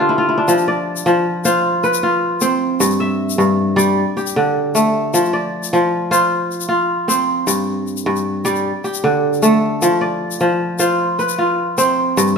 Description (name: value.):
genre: west african traditional, West African string and xylophone music.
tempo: 103 BPM (dotted quarters).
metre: 12/8.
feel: straight.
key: F lydian.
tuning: A4 = 439 Hz.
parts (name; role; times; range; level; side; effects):
kora; arpeggios; 0.0-12.4 s; G2 to E5; -14 LUFS; equal; none.
tube shaker; percussion; 0.5-12.3 s; none; -25 LUFS; left 10 dB; none.
room: moderate recital hall reverb, RT60 1.5 s.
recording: close, detailed microphones.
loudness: -14 LUFS.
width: side -5 dB against mid.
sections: 0.5-12.4 A section.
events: kora fill 0.0-0.5.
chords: 0.5 F5; 2.8 G5; 4.0 D5; 5.1 F5; 7.5 G5; 8.7 D5; 9.8 F.